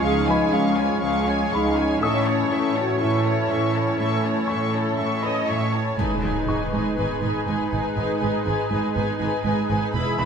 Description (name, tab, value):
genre	cinematic, hybrid orchestral and electronic film score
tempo	121 BPM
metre	4/4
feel	straight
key	G# phrygian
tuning	A4 = 443 Hz
part	rich studio violin section	melody	0.0-6.0 s	G#5 to C#6	-30 LUFS	left 5 dB	none
part	warm symphonic violin section	second line	0.0-10.3 s	B4 to B5	-29 LUFS	left 3 dB	none
part	rich symphonic viola section	accompaniment	0.0-10.3 s	D#4 to D#5	-30 LUFS	right 3 dB	none
part	dark French horn section	sustained chords	0.0-5.7 s	A3 to F#4	-26 LUFS	left 3 dB	none
part	lush unison pad	sustained chords	0.0-10.3 s	G#3 to E#5	-28 LUFS	equal	chorus
part	warm trombone section	sustained chords	0.0-5.7 s	E3 to C#4	-31 LUFS	right 2 dB	none
part	harp-like synth pluck	arpeggios	0.0-10.3 s	C#3 to A4	-32 LUFS	equal	chorus, digital delay
part	rich symphonic cello section	bass	0.0-10.3 s	C#2 to A2	-27 LUFS	right 3 dB	none
part	felt-muted upright piano	texture	0.0-10.3 s	B4 to D#6	-33 LUFS	left 2 dB	none
part	dark symphonic double bass section	bass	6.0-10.3 s	E1 to G#1	-29 LUFS	right 3 dB	none
part	impact	sound effects	6.0-8.0 s	none	-31 LUFS	equal	none
room	wet scoring stage reverb, RT60 1.7 s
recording	none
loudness	-20 LUFS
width	side -6 dB against mid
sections	0.0-6.0 A section; 6.0-10.3 B section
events	impact 6.0-8.0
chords	0.0 C#; 2.0 A; 6.0 G#m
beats	| 0.03 0.53 1.02 1.52 | 2.02 2.51 3.01 3.50 | 4.00 4.50 4.99 5.49 | 5.98 6.48 6.97 7.47 | 7.97 8.46 8.96 9.45 | 9.95